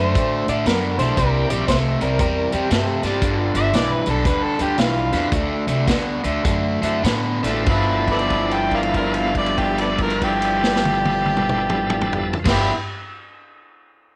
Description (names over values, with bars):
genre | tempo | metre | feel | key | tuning
electric blues shuffle | 94-118 BPM | 4/4 | swing 64% on 8ths | G mixolydian | A4 = 440 Hz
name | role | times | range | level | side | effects
electric guitar through a small old amp | melody | 0.0-3.7 s | G4 to D5 | -27 LUFS | equal | tremolo
raw garage guitar | riff | 0.0-12.7 s | G2 to E4 | -25 LUFS | equal | overdrive
upright bass | bass | 0.0-12.7 s | G1 to A2 | -28 LUFS | equal | tube saturation
vintage drum kit | drums | 0.2-12.6 s | crash cymbal, hi-hat, kick drum, snare drum, toms | -26 LUFS | equal | none
bright tonewheel organ | accompaniment | 1.0-12.7 s | G2 to B4 | -29 LUFS | equal | slow rotary speaker, overdrive
overdriven harmonica | second line | 3.6-12.7 s | F4 to G5 | -25 LUFS | equal | none
room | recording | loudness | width
light reverb, small room ambience | none | -20 LUFS | mono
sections
0.0-7.7 A section; 7.7-12.8 B section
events
slowing down 3.2-7.7; held note 7.7-12.4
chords
0.0 D9; 1.2 C9; 3.2 G9; 5.3 D9; 7.7 G13